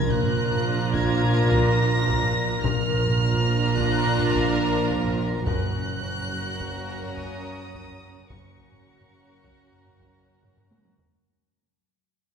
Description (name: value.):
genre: cinematic, suspense film score.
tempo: 106 BPM.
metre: 5/4.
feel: straight.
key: unclear.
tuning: A4 = 444 Hz.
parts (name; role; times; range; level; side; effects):
warm chamber violin section; melody; 0.0-10.6 s; Db6 to Bb6; -31 LUFS; equal; none.
warm chamber violin section; second line; 0.0-10.9 s; Bb4 to Bb5; -30 LUFS; right 1 dB; none.
warm chamber viola section; accompaniment; 0.0-10.9 s; Db4 to Gb4; -30 LUFS; right 2 dB; none.
mellow French horn section; sustained chords; 0.0-10.8 s; F3 to D4; -35 LUFS; left 1 dB; none.
concert harp; riff; 0.0-11.2 s; Gb2 to Bb3; -28 LUFS; left 4 dB; none.
dark chamber cello section; bass; 0.0-10.9 s; Gb2 to Bb2; -28 LUFS; right 5 dB; none.
rich studio double bass section; bass; 0.0-10.9 s; Gb1 to Bb1; -31 LUFS; right 5 dB; none.
timpani; percussion; 0.0-0.6 s; Bb2; -33 LUFS; right 3 dB; none.
taiko ensemble; drums; 0.2-11.3 s; none; -33 LUFS; right 1 dB; none.
room: moderate scoring stage reverb, RT60 2.1 s.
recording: minimal, uncompressed stereo recording.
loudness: -21 LUFS.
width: side -7 dB against mid.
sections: 0.0-11.1 A section.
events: fade-out 0.0-11.1; drum fill 10.4-11.1.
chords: 0.0 Bb; 5.5 Gb.